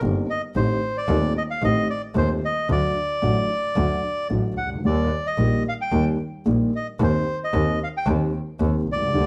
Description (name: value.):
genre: tango.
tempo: 112 BPM.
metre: 4/4.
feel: rubato.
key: unclear.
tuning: A4 = 439 Hz.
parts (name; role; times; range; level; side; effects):
dark upright piano; accompaniment; 0.0-9.3 s; Eb1 to G4; -27 LUFS; equal; none.
clear double bass; bass; 0.0-9.3 s; G1 to Eb2; -27 LUFS; equal; none.
bandoneon; melody; 0.3-9.3 s; C5 to G5; -28 LUFS; equal; none.
room: moderate large studio reverb, RT60 1.1 s.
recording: none.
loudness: -23 LUFS.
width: mono.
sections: 0.0-9.3 A section.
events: none.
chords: 0.0 Cm7/G; 0.6 Am7b5; 2.7 D; 4.8 Eb; 7.0 Cm7/Eb.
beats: 0.02 | 0.55 1.08 1.62 2.15 | 2.69 3.22 3.76 4.30 | 4.84 5.38 5.92 6.46 | 7.00 7.53 8.06 8.60 | 9.13.